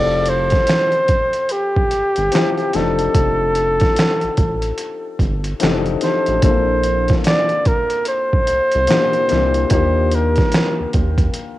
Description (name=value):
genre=R&B, neo-soul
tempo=73 BPM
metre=4/4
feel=swing 60% on 16ths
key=F major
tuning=A4 = 445 Hz
part: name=breathy flugelhorn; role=melody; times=0.0-11.0 s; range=G4 to D5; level=-18 LUFS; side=equal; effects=none
part: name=warm upright piano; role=accompaniment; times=0.0-11.6 s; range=Bb2 to C5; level=-24 LUFS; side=left 8 dB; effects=cassette tape
part: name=rubbery square bass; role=bass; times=0.0-11.3 s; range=F1 to Eb2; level=-21 LUFS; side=right 1 dB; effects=none
part: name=boom bap sampler-style drum kit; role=drums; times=0.3-11.6 s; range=finger snaps, hi-hat, kick drum, snare drum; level=-18 LUFS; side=right 1 dB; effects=overdrive, cassette tape
room=little or no reverb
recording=home recording on cassette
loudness=-14 LUFS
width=side -15 dB against mid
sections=0.0-11.6 A section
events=none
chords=0.0 Fmaj9; 2.7 F13; 6.4 Bbmaj9#11; 9.7 Ebmaj9